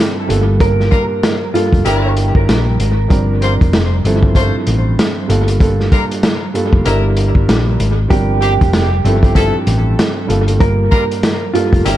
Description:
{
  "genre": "hip hop, boom-bap hip-hop",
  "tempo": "96 BPM",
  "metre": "4/4",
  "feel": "swing 62% on 16ths",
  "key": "G dorian",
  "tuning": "A4 = 440 Hz",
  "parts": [
    { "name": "dark baby grand piano", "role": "accompaniment", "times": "0.0-12.0 s", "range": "G2 to Bb4", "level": "-18 LUFS", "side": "right 2 dB", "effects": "dub echo" },
    { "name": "hollow-body short-scale fingered electric bass", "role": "bass", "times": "0.3-12.0 s", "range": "F1 to Bb1", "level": "-14 LUFS", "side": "equal", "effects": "none" },
    { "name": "vintage drum kit", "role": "drums", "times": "0.3-12.0 s", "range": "hi-hat, kick drum, snare drum", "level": "-15 LUFS", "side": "equal", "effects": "dub echo" },
    { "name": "mellow electric guitar", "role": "melody", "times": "0.6-3.1, 8.1-12.0 s", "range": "F4 to Bb4", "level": "-20 LUFS", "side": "right 3 dB", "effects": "wide subtle chorus, dub echo" },
    { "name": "warm horn section", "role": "stabs", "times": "0.9-12.0 s", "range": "D3 to C5", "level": "-24 LUFS", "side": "left 3 dB", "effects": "dub echo" }
  ],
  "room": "small room ambience",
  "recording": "echo-heavy mix",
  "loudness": "-11 LUFS",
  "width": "side -13 dB against mid",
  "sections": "0.0-12.0 A section",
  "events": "none",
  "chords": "0.3 Gm7; 1.9 Gm6; 3.1 Bb69/G; 4.0 Fmaj7/G; 5.3 Gm7; 6.9 Gm6; 8.1 Bb69/G; 9.0 Fmaj7/G; 10.3 Gm7",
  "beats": "| 0.60 1.23 1.85 2.48 | 3.10 3.73 4.35 4.98 | 5.60 6.23 6.85 7.48 | 8.10 8.73 9.35 9.98 | 10.60 11.23 11.85"
}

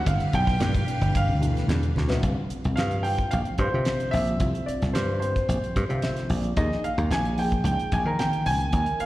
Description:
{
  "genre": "electric jazz fusion",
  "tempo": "111 BPM",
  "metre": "4/4",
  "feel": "straight",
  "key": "C minor",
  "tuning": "A4 = 438 Hz",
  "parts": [
    { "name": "warm baby grand piano", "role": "melody", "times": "0.0-9.1 s", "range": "C5 to Bb5", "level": "-28 LUFS", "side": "right 1 dB", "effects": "slapback echo" },
    { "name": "overdriven reed electric piano", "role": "accompaniment", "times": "0.0-9.1 s", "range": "B2 to E5", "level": "-32 LUFS", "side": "left 2 dB", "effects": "phaser, slapback echo" },
    { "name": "string machine, violins", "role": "sustained chords", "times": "0.0-2.2 s", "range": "G3 to F5", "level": "-37 LUFS", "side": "equal", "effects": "ensemble chorus" },
    { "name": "dry thumbed slap bass", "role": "bass", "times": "0.1-9.0 s", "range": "G1 to Eb3", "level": "-25 LUFS", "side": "equal", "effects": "none" },
    { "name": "damped 70s drum kit", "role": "drums", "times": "0.1-9.1 s", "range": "hi-hat, kick drum, snare drum", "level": "-29 LUFS", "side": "equal", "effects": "none" },
    { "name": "congas", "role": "percussion", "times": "0.1-2.1 s", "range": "none", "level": "-34 LUFS", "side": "right 2 dB", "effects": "none" }
  ],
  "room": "little or no reverb",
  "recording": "live gig heard through the venue's PA, recital hall reverb",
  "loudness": "-22 LUFS",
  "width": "side -16 dB against mid",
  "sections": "0.0-2.2 A section; 2.2-9.1 B section",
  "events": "grand piano solo 0.0-2.2; drum fill 2.0; reed electric piano fill 5.8-6.6",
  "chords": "0.1 G7; 2.2 C9sus4; 6.6 Eb9sus4",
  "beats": "| 0.07 0.61 1.15 1.70 | 2.24 2.78 3.32 3.86 | 4.40 4.95 5.49 6.03 | 6.57 7.12 7.66 8.20 | 8.74"
}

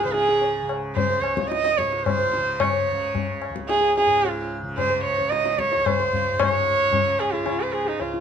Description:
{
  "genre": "indian classical, Hindustani",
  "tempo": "111 BPM",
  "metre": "7/4",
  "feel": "straight",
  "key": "unclear",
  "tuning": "A4 = 436 Hz",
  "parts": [
    { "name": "rich sarangi", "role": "melody", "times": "0.0-8.1 s", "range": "Eb4 to Eb5", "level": "-21 LUFS", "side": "right 2 dB", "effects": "none" },
    { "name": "steel pan", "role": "second line", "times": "0.0-8.2 s", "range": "F4 to Eb5", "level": "-31 LUFS", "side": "left 2 dB", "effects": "none" },
    { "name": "tanpura", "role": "drone", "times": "0.0-8.2 s", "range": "Db2 to Db3", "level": "-33 LUFS", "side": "equal", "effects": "none" },
    { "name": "tabla", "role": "percussion", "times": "0.1-8.2 s", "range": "none", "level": "-26 LUFS", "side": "left 7 dB", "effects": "none" }
  ],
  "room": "light reverb",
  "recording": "close, detailed microphones",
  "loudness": "-20 LUFS",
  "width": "side -7 dB against mid",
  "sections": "0.0-8.2 A section",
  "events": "none",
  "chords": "none",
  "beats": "0.41 0.96 1.50 2.05 | 2.59 3.14 3.68 4.22 4.77 5.31 5.84 | 6.38 6.92 7.46 7.99"
}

